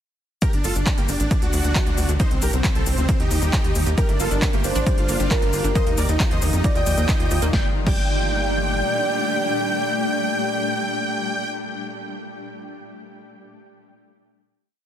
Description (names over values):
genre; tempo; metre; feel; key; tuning
uplifting trance; 135 BPM; 4/4; straight; G minor; A4 = 440 Hz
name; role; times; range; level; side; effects
dense compressed supersaw; melody; 0.4-11.5 s; Bb3 to G5; -26 LUFS; equal; sidechain pumping, ping-pong delay
shimmering ambient pad; sustained chords; 1.1-11.2 s; Bb2 to G4; -29 LUFS; left 2 dB; chorus, built-in reverb, sidechain pumping
big-room dance drum kit; drums; 0.4-8.0 s; crash cymbal, handclaps, hi-hat, shaker, snare drum; -28 LUFS; equal; overdrive
electronic kick drum; drums; 0.4-8.0 s; none; -21 LUFS; equal; overdrive
tight sequencer bass; bass; 0.5-8.8 s; G1 to F2; -23 LUFS; equal; sidechain pumping
warm velvety synth lead; second line; 4.0-11.5 s; Bb4 to D5; -28 LUFS; right 1 dB; chorus, ping-pong delay
analog pluck; arpeggios; 4.0-8.0 s; F3 to F4; -31 LUFS; right 2 dB; chorus, phaser, sidechain pumping, ping-pong delay
room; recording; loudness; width
little or no reverb; dense, heavily limited modern master; -18 LUFS; side -10 dB against mid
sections
0.4-7.5 drop; 7.5-11.1 final chord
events
drop 0.4-7.5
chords
0.4 Gmadd9; 1.3 D; 2.2 Cm; 3.1 Ebsus2; 4.0 Gmadd9; 5.8 Ebsus2; 7.5 Gmadd9